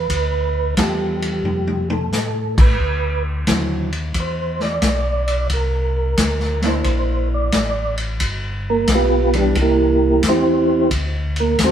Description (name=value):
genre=soul jazz organ trio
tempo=89 BPM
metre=4/4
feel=swing 67% on 8ths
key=G mixolydian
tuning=A4 = 438 Hz
part: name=percussive tonewheel organ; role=melody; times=0.0-11.7 s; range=G3 to D5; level=-20 LUFS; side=right 2 dB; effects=slow rotary speaker, chorus vibrato
part: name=mellow tonewheel organ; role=bass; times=0.0-11.7 s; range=G1 to A2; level=-22 LUFS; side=equal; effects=overdrive, chorus vibrato, slow rotary speaker
part: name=vintage drum kit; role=drums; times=0.1-11.7 s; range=crash cymbal, hi-hat, kick drum, ride cymbal, snare drum, toms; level=-21 LUFS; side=left 1 dB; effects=none
part: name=hollow-body jazz guitar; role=accompaniment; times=0.8-10.2 s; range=D3 to A4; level=-24 LUFS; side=right 1 dB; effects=none
room=light reverb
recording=band playing live in one room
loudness=-16 LUFS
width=side -9 dB against mid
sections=0.0-11.7 A section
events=tonewheel organ solo 0.0-11.7; drum fill 1.4-2.1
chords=0.0 G9; 2.8 D9; 5.5 C9; 8.2 G7; 9.6 C9; 10.9 N.C.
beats=| 0.10 0.77 1.45 2.12 | 2.80 3.47 4.15 4.83 | 5.50 6.18 6.85 7.53 | 8.20 8.88 9.56 10.23 | 10.91 11.59